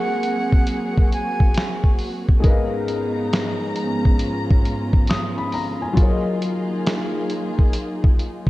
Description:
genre	lo-fi hip hop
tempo	68 BPM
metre	4/4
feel	swing 64% on 16ths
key	unclear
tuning	A4 = 439 Hz
part	silver concert flute	melody	0.0-1.8 s	Gb5 to Ab5	-28 LUFS	right 3 dB	diffuse ambient delay
part	felt-muted upright piano	accompaniment	0.0-8.5 s	Gb3 to Eb6	-26 LUFS	left 3 dB	cassette tape
part	dark studio string section	sustained chords	0.0-8.5 s	Ab2 to Bb5	-25 LUFS	right 1 dB	none
part	lo-fi sampler-style drum kit	drums	0.2-8.5 s	hi-hat, kick drum, snare drum	-18 LUFS	equal	vintage 12-bit sampler grit
room	light reverb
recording	cassette tape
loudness	-18 LUFS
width	side -18 dB against mid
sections	0.0-8.5 A section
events	none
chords	0.0 Ab9; 2.4 Db13/Ab; 6.0 Gbmaj13

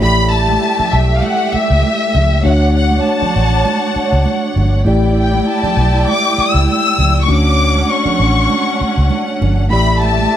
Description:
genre	lush 1970s-style soul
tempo	99 BPM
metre	4/4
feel	swing 54% on 16ths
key	D major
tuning	A4 = 440 Hz
part	warm symphonic violin section	melody	0.0-10.4 s	E5 to E6	-16 LUFS	left 2 dB	none
part	warm studio string section	second line	0.0-10.4 s	A3 to G5	-20 LUFS	right 2 dB	none
part	mellow tine electric piano	accompaniment	0.0-10.4 s	A3 to D5	-20 LUFS	left 3 dB	medium stereo tremolo
part	vintage muted fingered electric bass	bass	0.0-10.3 s	G1 to D2	-14 LUFS	equal	none
part	congas	percussion	0.3-10.3 s	none	-23 LUFS	right 7 dB	none
room	light reverb, small room ambience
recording	none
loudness	-11 LUFS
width	side -11 dB against mid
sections	0.0-10.4 A section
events	none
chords	0.0 A7sus4; 2.4 Dmaj7; 4.9 A7sus4; 7.3 Dmaj7; 9.7 A7sus4

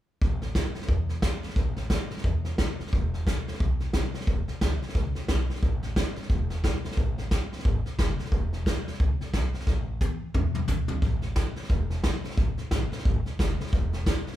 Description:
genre	rockabilly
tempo	178 BPM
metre	4/4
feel	swing 60% on 8ths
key	A major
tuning	A4 = 440 Hz
part	upright bass	bass	0.2-14.3 s	E1 to E2	-31 LUFS	equal	none
part	soft brush drum kit	drums	0.2-14.4 s	hi-hat, kick drum, snare drum, toms	-26 LUFS	equal	none
room	light reverb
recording	band playing live in one room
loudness	-25 LUFS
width	side -13 dB against mid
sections	0.2-11.0 A section; 11.0-14.4 A section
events	drum fill 9.7-11.0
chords	none

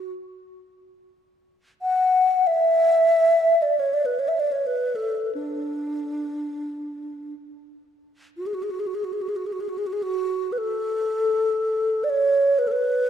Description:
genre	world meditative, free-time meditation music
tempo	free time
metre	none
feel	none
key	unclear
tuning	A4 = 440 Hz
part	mellow hollow alto flute	solo	0.0-13.1 s	D4 to F#5	-20 LUFS	equal	ping-pong delay
room	wet church reverb, RT60 2.5 s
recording	dark, warm production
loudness	-20 LUFS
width	side -8 dB against mid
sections	0.0-7.7 A section; 7.7-13.1 A section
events	none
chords	none

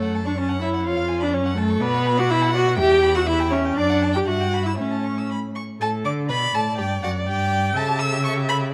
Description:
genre	quick classical-period movement for string quartet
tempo	123 BPM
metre	2/4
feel	straight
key	D major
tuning	A4 = 438 Hz
part	warm violin	melody	0.0-8.6 s	C#5 to E6	-29 LUFS	equal	none
part	rich violin	second line	0.0-8.7 s	F#4 to G5	-31 LUFS	equal	none
part	warm viola	accompaniment	0.0-8.7 s	A3 to E5	-24 LUFS	equal	none
part	warm cello	bass	0.0-8.7 s	E2 to D3	-27 LUFS	equal	none
room	moderate recital hall reverb, RT60 1.4 s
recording	close, detailed microphones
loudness	-21 LUFS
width	mono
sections	0.0-5.8 A section; 5.8-8.7 B section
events	none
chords	0.0 F#m; 0.9 C#7/E#; 1.3 F#m; 1.8 Bm; 2.8 Em; 3.8 D/F#; 4.3 Em/G; 4.8 A; 5.8 D5/A; 6.8 Dadd11/F#; 7.8 A7/C#

